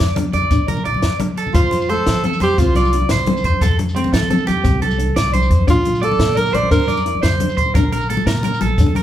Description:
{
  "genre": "highlife guitar band",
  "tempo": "116 BPM (dotted quarters)",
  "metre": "12/8",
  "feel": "straight",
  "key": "F major",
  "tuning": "A4 = 439 Hz",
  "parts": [
    { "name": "nylon-string guitar", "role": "accompaniment", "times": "0.0-9.0 s", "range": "A3 to E4", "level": "-26 LUFS", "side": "left 4 dB", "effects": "none" },
    { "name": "electric guitar at the edge of break-up", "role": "arpeggios", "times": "0.0-9.0 s", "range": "C4 to D5", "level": "-21 LUFS", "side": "right 2 dB", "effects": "none" },
    { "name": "upright bass", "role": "bass", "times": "0.0-9.0 s", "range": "Bb1 to F3", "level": "-20 LUFS", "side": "equal", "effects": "none" },
    { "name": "congas", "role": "percussion", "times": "0.0-9.0 s", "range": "none", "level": "-22 LUFS", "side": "left 2 dB", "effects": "none" },
    { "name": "compact cocktail drum kit", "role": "drums", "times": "0.2-9.0 s", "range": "hi-hat, kick drum, snare drum", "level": "-20 LUFS", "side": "equal", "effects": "none" },
    { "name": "shekere", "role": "percussion", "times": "0.2-8.9 s", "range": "none", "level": "-25 LUFS", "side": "left 1 dB", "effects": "none" },
    { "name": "breathy alto saxophone", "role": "melody", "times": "1.5-7.1 s", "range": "F4 to D5", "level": "-18 LUFS", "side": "right 1 dB", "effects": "none" }
  ],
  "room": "moderate large studio reverb, RT60 0.9 s",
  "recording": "band playing live in one room",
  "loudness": "-14 LUFS",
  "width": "side -11 dB against mid",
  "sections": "0.0-1.5 A section; 1.5-9.0 B section",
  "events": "none",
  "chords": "0.0 Bb; 1.5 F; 5.7 Bb",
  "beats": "0.51 1.03 | 1.55 2.06 2.58 3.10 | 3.61 4.13 4.65 5.16 | 5.68 6.20 6.71 7.23 | 7.74 8.26 8.78"
}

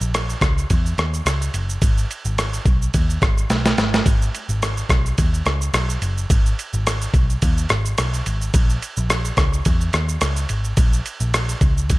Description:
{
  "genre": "indie pop, bedroom pop",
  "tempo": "107 BPM",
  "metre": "4/4",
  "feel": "swing 55% on 16ths",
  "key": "G# minor",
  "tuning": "A4 = 440 Hz",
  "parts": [
    { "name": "vintage muted picked electric bass", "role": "bass", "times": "0.0-12.0 s", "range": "F#1 to E2", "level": "-21 LUFS", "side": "equal", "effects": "none" },
    { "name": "boom bap sampler-style drum kit", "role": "drums", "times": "0.0-12.0 s", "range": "kick drum, ride cymbal, rim click, shaker, snare drum", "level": "-19 LUFS", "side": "equal", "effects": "none" }
  ],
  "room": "little or no reverb",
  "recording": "none",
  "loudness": "-17 LUFS",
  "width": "side -20 dB against mid",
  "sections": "0.0-4.1 A section; 4.1-12.0 A section",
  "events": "drum fill 3.5-4.1",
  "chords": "none",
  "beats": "0.13 0.69 1.25 | 1.81 2.38 2.94 3.50 | 4.06 4.62 5.18 5.74 | 6.30 6.86 7.42 7.98 | 8.54 9.10 9.66 10.22 | 10.78 11.34 11.90"
}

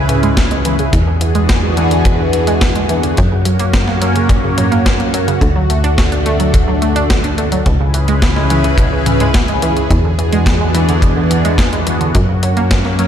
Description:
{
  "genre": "synthwave",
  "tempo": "107 BPM",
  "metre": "4/4",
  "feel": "straight",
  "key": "unclear",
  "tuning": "A4 = 440 Hz",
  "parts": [
    { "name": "lush unison pad", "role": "sustained chords", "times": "0.0-13.1 s", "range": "C#3 to B4", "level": "-17 LUFS", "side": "equal", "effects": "chorus, phaser, sidechain pumping" },
    { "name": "analog pluck", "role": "arpeggios", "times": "0.0-13.1 s", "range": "A#2 to F#4", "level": "-20 LUFS", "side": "right 3 dB", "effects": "chorus, ping-pong delay" },
    { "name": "tight sequencer bass", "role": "bass", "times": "0.0-13.1 s", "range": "C#2 to F#2", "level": "-16 LUFS", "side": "equal", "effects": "none" },
    { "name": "clean 12-bit digital drum machine", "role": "drums", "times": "0.1-13.1 s", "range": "hi-hat, snare drum, toms", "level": "-20 LUFS", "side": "left 1 dB", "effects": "overdrive, studio reverb, gated reverb" },
    { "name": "kick drum", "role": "drums", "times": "0.4-12.8 s", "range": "none", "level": "-17 LUFS", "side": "equal", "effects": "studio reverb" }
  ],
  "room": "light reverb",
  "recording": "none",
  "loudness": "-11 LUFS",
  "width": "side -9 dB against mid",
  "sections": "0.0-13.1 A section",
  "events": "none",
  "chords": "0.0 C#m7; 0.9 E7; 3.2 F#; 5.4 D; 7.7 C#m7; 9.9 E7; 12.1 F#",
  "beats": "0.37 | 0.93 1.49 2.06 2.62 | 3.18 3.74 4.30 4.86 | 5.42 5.98 6.54 7.10 | 7.66 8.22 8.78 9.35 | 9.90 10.47 11.03 11.59 | 12.15 12.71"
}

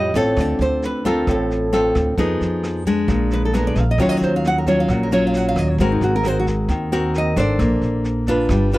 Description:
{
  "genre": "bossa nova",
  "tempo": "133 BPM",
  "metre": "4/4",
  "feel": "straight",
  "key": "Bb major",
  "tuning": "A4 = 440 Hz",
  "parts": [
    { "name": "nylon-string guitar", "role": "melody", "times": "0.0-8.0 s", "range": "Eb4 to Gb5", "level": "-22 LUFS", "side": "right 1 dB", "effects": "none" },
    { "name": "nylon-string guitar", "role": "accompaniment", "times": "0.0-8.8 s", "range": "A2 to C5", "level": "-19 LUFS", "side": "left 1 dB", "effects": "none" },
    { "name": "upright bass", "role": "bass", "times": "0.0-8.8 s", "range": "G1 to E#2", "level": "-22 LUFS", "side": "equal", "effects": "none" },
    { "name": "jazz brush drum kit", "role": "drums", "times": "0.1-8.8 s", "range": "kick drum, rim click, snare drum", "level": "-28 LUFS", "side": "equal", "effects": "none" }
  ],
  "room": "little or no reverb",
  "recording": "dry, close 1970s-style studio recording",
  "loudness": "-16 LUFS",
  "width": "side -18 dB against mid",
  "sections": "0.0-8.8 A section",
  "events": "nylon-string guitar solo 0.0-8.8",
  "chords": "0.4 Dm7; 2.2 Fm7b5; 3.1 Bb7b9; 4.0 Ebm9; 5.8 Ab9; 7.6 Bbmaj9",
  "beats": "| 0.37 0.82 1.27 1.73 | 2.18 2.63 3.08 3.53 | 3.98 4.44 4.89 5.34 | 5.79 6.24 6.70 7.15 | 7.60 8.05 8.50"
}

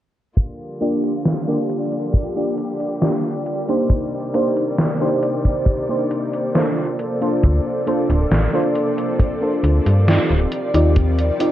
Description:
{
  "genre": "vaporwave",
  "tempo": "68 BPM",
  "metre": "4/4",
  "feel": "straight",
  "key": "unclear",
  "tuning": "A4 = 440 Hz",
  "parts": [
    { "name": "rich studio string section", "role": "sustained chords", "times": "0.4-11.5 s", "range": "C3 to D5", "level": "-26 LUFS", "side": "equal", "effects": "none" },
    { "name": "gated 80s digital drum machine", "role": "drums", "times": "0.4-11.5 s", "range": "hi-hat, snare drum", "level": "-21 LUFS", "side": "equal", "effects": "gated reverb, gated reverb snare, vintage 12-bit sampler grit" },
    { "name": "kick drum", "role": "drums", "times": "0.4-11.1 s", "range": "none", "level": "-17 LUFS", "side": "equal", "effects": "vintage 12-bit sampler grit" },
    { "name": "FM electric piano with soft pad layer", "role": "accompaniment", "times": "0.8-11.5 s", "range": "Bb3 to D5", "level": "-20 LUFS", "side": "equal", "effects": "analog chorus, cassette tape, analog delay" },
    { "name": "slap-like FM bass", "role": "bass", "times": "7.4-11.3 s", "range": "D1 to G2", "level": "-16 LUFS", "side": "equal", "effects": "none" }
  ],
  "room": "light reverb, small room reverb",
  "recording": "worn, warbling old tape, cassette tape, warbly pitch drift, low-pass filter",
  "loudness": "-17 LUFS",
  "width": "side -12 dB against mid",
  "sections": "0.4-11.5 A section",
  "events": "filter sweep 0.4-11.5",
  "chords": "0.4 Gm7; 3.9 Cm9; 7.0 Bbmaj9/D; 10.5 Ebmaj13",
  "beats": "| 0.37 1.25 2.14 3.02 | 3.90 4.78 5.67 6.55 | 7.43 8.31 9.20 10.08 | 10.96"
}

